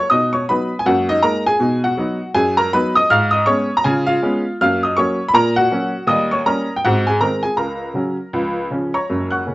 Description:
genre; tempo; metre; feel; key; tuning
jazz, stride piano; 160 BPM; 4/4; swing 61% on 8ths; B major, F# major from 3.1 s; A4 = 440 Hz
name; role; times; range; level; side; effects
clear upright piano; solo; 0.0-9.5 s; F#1 to F#6; -15 LUFS; equal; none
room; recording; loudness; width
moderate studio reverb, RT60 0.5 s; dark, warm production, nothing above 7.8 kHz; -15 LUFS; side -18 dB against mid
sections
0.0-9.1 A section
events
none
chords
0.1 B; 0.8 F#69; 1.6 B; 3.1 C#7/G#; 3.8 C#7; 4.6 F#; 5.3 F#/A#; 6.1 D#7; 6.8 G#7; 7.6 F#/C#; 8.3 C#

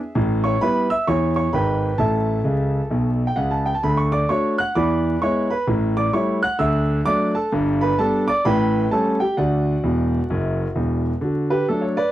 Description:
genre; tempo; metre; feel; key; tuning
jazz, stride piano; 130 BPM; 4/4; swing 63% on 8ths; D major; A4 = 438 Hz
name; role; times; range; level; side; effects
clear concert grand piano; solo; 0.0-12.1 s; E1 to F#6; -18 LUFS; equal; none
room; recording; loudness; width
light reverb; dry, close 1970s-style studio recording, vinyl crackle; -18 LUFS; side -14 dB against mid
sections
0.0-11.2 A section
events
grand piano fill 2.4-3.8, 9.8-11.2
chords
0.1 A9; 2.0 A; 3.8 D; 4.8 E7; 5.7 A7; 6.6 D; 7.5 G; 8.4 A7; 9.4 D

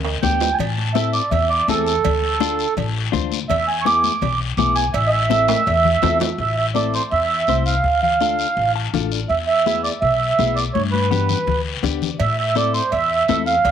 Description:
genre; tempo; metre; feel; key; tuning
latin, cumbia; 166 BPM; 4/4; straight; A minor; A4 = 441 Hz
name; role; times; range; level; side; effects
upright bass; bass; 0.0-13.7 s; A1 to A2; -24 LUFS; left 1 dB; none
timbales and cowbell; percussion; 0.0-6.3, 12.2-13.7 s; none; -28 LUFS; right 9 dB; none
mellow accordion; melody; 0.2-13.7 s; A4 to D6; -18 LUFS; right 4 dB; none
clean electric guitar; accompaniment; 0.2-13.5 s; B3 to A5; -25 LUFS; left 12 dB; none
congas; percussion; 0.2-13.7 s; none; -27 LUFS; left 14 dB; none
guiro; percussion; 0.2-13.7 s; none; -29 LUFS; left 12 dB; none
room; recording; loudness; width
wet spring reverb, RT60 1.3 s, small room ambience; 1960s-style stereo with parts hard left and right; -16 LUFS; side -9 dB against mid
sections
0.0-6.4 A section; 6.4-13.7 B section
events
drum fill 0.0-0.6, 5.5-6.4, 10.7-12.2; accordion solo 0.0-6.4; clean electric guitar fill 8.6-9.3, 11.7-12.2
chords
0.0 G; 0.6 Am; 2.0 Dm; 3.5 E7; 4.9 Am; 7.8 Dm; 9.3 E; 10.7 G; 12.2 Am

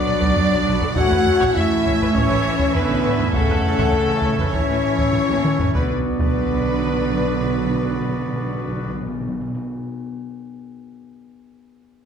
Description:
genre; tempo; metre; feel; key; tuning
cinematic, epic orchestral film score; 101 BPM; 4/4; straight; B minor; A4 = 441 Hz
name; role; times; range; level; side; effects
warm symphonic violin section; melody; 0.0-8.9 s; A4 to F#5; -28 LUFS; left 4 dB; none
clear studio violin section; second line; 0.0-8.9 s; A4 to F#5; -31 LUFS; left 2 dB; none
silver concert flute; second line; 0.0-5.4 s; C#5 to F#5; -31 LUFS; left 2 dB; none
clear symphonic viola section; accompaniment; 0.0-8.9 s; D4 to E5; -32 LUFS; right 2 dB; none
chamber organ, soft reed; sustained chords; 0.0-8.9 s; B3 to F#5; -30 LUFS; right 1 dB; none
dark French horn section; sustained chords; 0.0-8.9 s; A3 to F#4; -22 LUFS; left 3 dB; none
warm trombone section; sustained chords; 0.0-8.9 s; D3 to D4; -32 LUFS; right 6 dB; none
dark trumpet section; stabs; 0.0-8.9 s; A4 to F#5; -28 LUFS; right 1 dB; none
rich symphonic cello section; bass; 0.0-8.9 s; C#3 to A3; -26 LUFS; right 4 dB; none
rich symphonic double bass section; bass; 0.1-8.9 s; A1 to B1; -27 LUFS; right 4 dB; none
taiko ensemble; drums; 0.2-6.9 s; none; -23 LUFS; equal; none
timpani; percussion; 5.7-9.6 s; B2; -28 LUFS; left 1 dB; none
room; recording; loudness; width
moderate scoring stage reverb, RT60 1.6 s; none; -17 LUFS; side -7 dB against mid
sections
0.0-5.8 A section; 5.8-8.1 B section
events
drum fill 5.1-5.8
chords
0.0 Bm; 1.0 A; 5.8 Bm

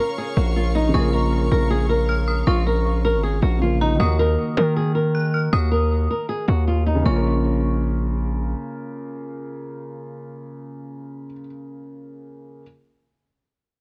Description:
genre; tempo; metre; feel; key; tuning
hip hop; 157 BPM; 4/4; half-time; Bb minor; A4 = 439 Hz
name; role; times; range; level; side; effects
flamenco guitar; melody; 0.0-8.2 s; Db4 to Bb4; -27 LUFS; equal; low-pass filter, analog delay
dark detuned synth bell; second line; 0.0-8.2 s; Bb5 to Gb6; -33 LUFS; equal; chorus, tremolo, analog delay
dark grand piano; accompaniment; 0.0-12.6 s; Db3 to Bb4; -30 LUFS; equal; low-pass filter
dark studio string section; sustained chords; 0.0-4.0 s; Bb4 to Db6; -36 LUFS; equal; none
distorted 808-style bass; bass; 0.4-8.5 s; Ab1 to Eb3; -22 LUFS; equal; distortion
room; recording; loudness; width
light reverb; echo-heavy mix; -20 LUFS; mono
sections
0.0-4.0 A section; 4.0-7.1 B section; 7.1-10.1 C section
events
none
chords
0.0 Bbm; 4.0 Ebm; 7.1 Bbm

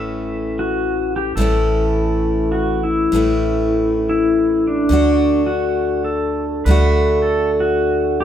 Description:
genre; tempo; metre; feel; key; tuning
acoustic folk duo or small band; 102 BPM; 3/4; straight; A major; A4 = 440 Hz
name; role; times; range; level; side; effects
pedal steel guitar; melody; 0.0-8.2 s; D4 to E5; -19 LUFS; left 1 dB; none
picked steel-string acoustic guitar; accompaniment; 0.0-8.2 s; A2 to A4; -19 LUFS; equal; none
upright bass; bass; 0.0-8.2 s; A1 to D2; -22 LUFS; right 1 dB; none
room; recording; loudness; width
light reverb; band playing live in one room; -15 LUFS; side -10 dB against mid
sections
0.0-1.4 A section; 1.4-8.2 B section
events
none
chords
0.0 A; 4.9 D

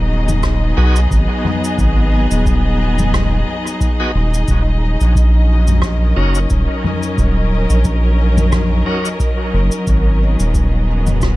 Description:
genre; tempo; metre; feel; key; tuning
ambient dub; 89 BPM; 4/4; swing 55% on 16ths; Eb minor; A4 = 440 Hz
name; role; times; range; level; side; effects
rich studio string section; sustained chords; 0.0-11.4 s; Gb3 to Eb5; -20 LUFS; left 1 dB; none
soft dub sub bass; bass; 0.0-11.4 s; Eb1 to Cb2; -14 LUFS; equal; none
soft-mallet drum kit; drums; 0.3-11.4 s; cabasa, rim click, toms; -23 LUFS; left 2 dB; dub echo
electronic kick drum; drums; 0.4-11.4 s; none; -20 LUFS; equal; none
bright tonewheel organ; stabs; 0.8-9.1 s; Gb3 to Eb5; -26 LUFS; left 1 dB; overdrive, fast rotary speaker, dub echo
room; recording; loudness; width
small room ambience; dark, warm production; -13 LUFS; side -18 dB against mid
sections
0.0-11.4 A section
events
none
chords
0.0 Abm7; 4.5 Ebm7; 9.9 Abm7

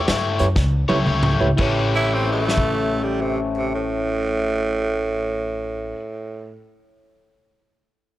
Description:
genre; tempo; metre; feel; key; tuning
electric blues shuffle; 111 BPM; 4/4; swing 66% on 8ths; A mixolydian; A4 = 440 Hz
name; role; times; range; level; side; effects
overdriven semi-hollow guitar; riff; 0.0-6.0 s; A3 to C#5; -24 LUFS; left 4 dB; none
upright bass; bass; 0.0-5.9 s; A1 to G2; -25 LUFS; equal; none
vintage drum kit; drums; 0.1-2.7 s; crash cymbal, hi-hat, kick drum, snare drum, toms; -23 LUFS; equal; none
bright reed electric piano; accompaniment; 0.4-5.9 s; E4 to C#5; -27 LUFS; right 3 dB; none
growling tenor saxophone; second line; 2.0-6.7 s; A2 to E4; -23 LUFS; right 3 dB; none
room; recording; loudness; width
light reverb, small room ambience; none; -18 LUFS; side -14 dB against mid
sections
0.0-1.6 A section; 1.6-5.9 B section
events
slowing down 0.0-1.6; drum fill 0.6-1.6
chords
0.0 A7; 1.6 A9

